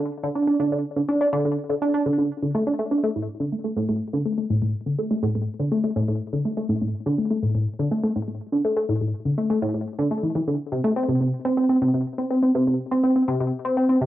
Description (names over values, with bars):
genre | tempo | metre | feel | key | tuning
ambient | 123 BPM | 4/4 | straight | unclear | A4 = 436 Hz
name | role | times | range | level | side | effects
tight sequenced synth | solo | 0.0-14.1 s | A2 to D4 | -21 LUFS | equal | chorus, ping-pong delay
room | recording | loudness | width
wet booth ambience, RT60 0.3 s | home recording on cassette | -21 LUFS | side -14 dB against mid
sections
0.0-14.1 A section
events
none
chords
none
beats
0.23 0.72 | 1.21 1.69 2.18 2.67 | 3.16 3.65 4.13 4.62 | 5.11 5.60 6.08 6.57 | 7.06 7.55 8.04 8.52 | 9.01 9.50 9.99 10.47 | 10.96 11.45 11.94 12.43 | 12.91 13.40 13.89